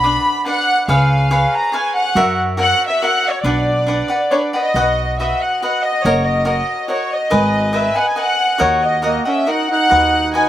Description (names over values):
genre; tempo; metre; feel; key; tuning
mexican folk, mariachi; 140 BPM; 3/4; rubato; B minor, B major from 4.7 s; A4 = 440 Hz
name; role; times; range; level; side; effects
warm studio violin section; melody; 0.0-10.5 s; C#5 to B5; -17 LUFS; equal; slapback echo
cavaquinho; accompaniment; 0.0-10.5 s; D4 to G#5; -18 LUFS; equal; slapback echo
upright bass; bass; 0.0-10.5 s; F#1 to F#2; -19 LUFS; equal; none
mellow trumpet; second line; 9.0-10.5 s; A#3 to D#4; -20 LUFS; right 4 dB; none
room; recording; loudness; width
little or no reverb; recorded outdoors, with no room sound; -14 LUFS; side -12 dB against mid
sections
0.0-4.7 A section; 4.7-10.5 B section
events
none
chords
0.0 Bm; 0.9 C#7; 2.2 F#7; 3.4 Bm; 4.7 B; 6.0 F#6; 7.3 G#madd9; 8.6 D#m; 9.9 B/D#